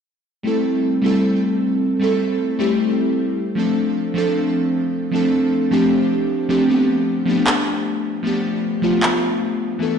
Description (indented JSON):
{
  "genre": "future bass",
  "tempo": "154 BPM",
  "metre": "4/4",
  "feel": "half-time",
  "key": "A minor",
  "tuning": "A4 = 440 Hz",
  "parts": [
    { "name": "glassy digital keys", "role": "accompaniment", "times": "0.4-10.0 s", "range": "E3 to A4", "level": "-17 LUFS", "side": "equal", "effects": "chorus, vintage 12-bit sampler grit, digital delay" },
    { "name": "electronic handclaps", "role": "drums", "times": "7.5-9.1 s", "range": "none", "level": "-21 LUFS", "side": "right 1 dB", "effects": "none" }
  ],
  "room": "wet lush hall reverb, RT60 2.0 s",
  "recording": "played on a big sound system in a bare room, stone room reverb, nothing above 11.0 kHz",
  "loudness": "-17 LUFS",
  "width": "side -7 dB against mid",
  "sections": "0.5-10.0 A section",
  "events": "none",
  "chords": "0.5 Am7; 3.4 Dm7; 6.7 G9"
}